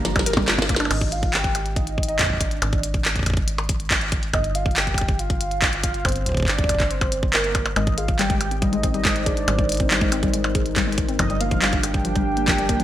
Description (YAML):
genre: IDM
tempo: 140 BPM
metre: 4/4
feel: straight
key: G phrygian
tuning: A4 = 441 Hz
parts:
  - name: warm velvety synth lead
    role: melody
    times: 0.0-12.8 s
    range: Bb4 to Bb5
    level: -28 LUFS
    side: right 1 dB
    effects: chorus, tremolo, digital delay
  - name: warbly tape-like pad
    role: sustained chords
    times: 0.0-0.9, 8.7-12.8 s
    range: G3 to C5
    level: -29 LUFS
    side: equal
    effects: chorus, built-in reverb
  - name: metallic FM bass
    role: bass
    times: 0.0-12.8 s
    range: G1 to Ab1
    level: -27 LUFS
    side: equal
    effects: tube saturation
  - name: warbly dusty pluck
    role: arpeggios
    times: 0.1-0.9, 7.8-12.8 s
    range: F3 to Bb4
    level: -26 LUFS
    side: left 2 dB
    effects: chorus, digital delay
  - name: glitchy drum kit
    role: drums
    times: 0.1-12.8 s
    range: crash cymbal, handclaps, hi-hat, percussion blips, snare drum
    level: -23 LUFS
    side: equal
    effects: gated reverb, digital delay
  - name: electronic kick drum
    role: drums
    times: 0.2-12.8 s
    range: none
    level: -24 LUFS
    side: equal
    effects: none
room: moderate plate reverb, RT60 2.1 s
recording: bright 1980s-style digital production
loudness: -19 LUFS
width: side -12 dB against mid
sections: 0.9-12.8 A section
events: drum fill 0.1-0.9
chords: 0.0 Gm7; 0.9 Fm13/Ab (rootless); 4.3 G5; 7.8 Abmaj7; 11.2 Gm7